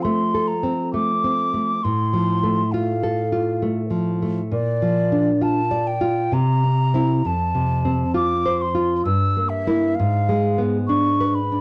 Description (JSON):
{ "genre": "romantic duo for flute and classical guitar", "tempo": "66 BPM", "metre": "3/4", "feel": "rubato", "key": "F major", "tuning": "A4 = 438 Hz", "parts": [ { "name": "mellow hollow silver concert flute", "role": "melody", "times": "0.0-11.6 s", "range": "D5 to E6", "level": "-26 LUFS", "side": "equal", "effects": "none" }, { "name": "nylon-string guitar", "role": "accompaniment", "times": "0.0-11.6 s", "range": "F2 to D5", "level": "-22 LUFS", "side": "equal", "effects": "none" } ], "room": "moderate studio reverb, RT60 0.6 s", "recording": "home recording on cassette", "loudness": "-21 LUFS", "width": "mono", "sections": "0.0-11.6 A section", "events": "none", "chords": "0.0 F; 1.8 F/A; 4.5 Bb; 6.3 C; 7.2 F; 9.1 Edim/G; 10.0 G#dim" }